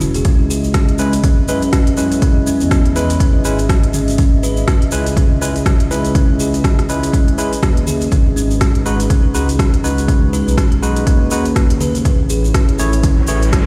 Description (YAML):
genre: afro house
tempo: 122 BPM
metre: 4/4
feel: swing 58% on 16ths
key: C# minor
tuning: A4 = 438 Hz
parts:
  - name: dark analog pad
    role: sustained chords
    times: 0.0-13.7 s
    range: G#3 to E5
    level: -29 LUFS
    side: equal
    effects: chorus, sidechain pumping
  - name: kalimba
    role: arpeggios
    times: 0.0-13.7 s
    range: C#4 to B4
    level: -24 LUFS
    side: equal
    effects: sidechain pumping, tape echo
  - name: smooth gliding synth bass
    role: bass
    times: 0.0-13.7 s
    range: E1 to F#2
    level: -21 LUFS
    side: equal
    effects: sidechain pumping
  - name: afro-pop drum kit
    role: drums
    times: 0.0-13.6 s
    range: hi-hat, rim click, toms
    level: -26 LUFS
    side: equal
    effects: none
  - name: egg shaker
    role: percussion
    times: 0.0-13.6 s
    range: none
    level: -30 LUFS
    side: equal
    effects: none
  - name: electronic kick drum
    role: drums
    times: 0.3-13.6 s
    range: none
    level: -17 LUFS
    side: equal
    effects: overdrive
  - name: barky tine electric piano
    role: stabs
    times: 1.0-13.4 s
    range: G#3 to C#5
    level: -25 LUFS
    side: equal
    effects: overdrive, sidechain pumping, tape echo
  - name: riser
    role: sound effects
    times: 12.7-13.7 s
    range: none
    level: -30 LUFS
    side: equal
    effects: none
room: little or no reverb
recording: played on a big sound system in a bare room, stone room reverb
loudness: -15 LUFS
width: mono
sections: 0.0-13.7 A section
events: riser 12.7-13.7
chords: 0.3 C#m7; 8.1 G#m7; 12.1 Amaj7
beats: | 0.25 0.74 1.24 1.73 | 2.22 2.71 3.20 3.69 | 4.19 4.68 5.17 5.66 | 6.15 6.65 7.14 7.63 | 8.12 8.61 9.11 9.60 | 10.09 10.58 11.07 11.56 | 12.06 12.55 13.04 13.53